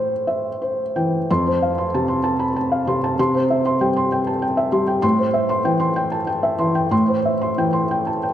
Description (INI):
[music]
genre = neoclassical minimalist piano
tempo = 64 BPM (dotted quarters)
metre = 6/8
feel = uneven beats, rubato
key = unclear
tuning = A4 = 440 Hz
[part]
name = felt-muted upright piano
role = solo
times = 0.0-8.3 s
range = F2 to C6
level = -17 LUFS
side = equal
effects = none
[sound]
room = wet concert hall reverb, RT60 2.5 s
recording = none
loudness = -17 LUFS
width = side -11 dB against mid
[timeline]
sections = 0.0-1.3 A section; 1.3-8.3 B section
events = none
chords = 0.0 Am7; 1.3 F; 3.2 C; 5.0 Am7